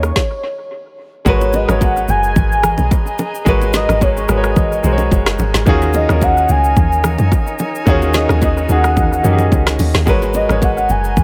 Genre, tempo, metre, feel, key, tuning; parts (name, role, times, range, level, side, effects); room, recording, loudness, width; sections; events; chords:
amapiano; 109 BPM; 4/4; swing 55% on 16ths; A4 = 439 Hz
warm velvety synth lead; melody; 0.0-11.2 s; C#5 to G#5; -22 LUFS; equal; chorus, analog delay
clear concert grand piano; accompaniment; 0.0-11.2 s; D#3 to C#5; -22 LUFS; equal
bright flute section; sustained chords; 0.0-11.2 s; D#4 to C#6; -29 LUFS; equal; sidechain pumping
deep house drum kit; drums; 0.0-11.2 s; hi-hat, kick drum, rim click, shaker, snare drum; -19 LUFS; equal
deep log drum bass; bass; 1.3-11.2 s; F#1 to F#2; -19 LUFS; equal
congas and bongos; percussion; 1.3-11.2 s; -26 LUFS; equal; analog delay
little or no reverb; echo-heavy mix; -14 LUFS; mono
0.0-1.3 A section; 1.3-11.2 B section
stop 0.2-1.3; drop 1.3-11.2
0.0 D#m11; 1.3 G#m9; 5.7 D#m11; 10.1 G#m9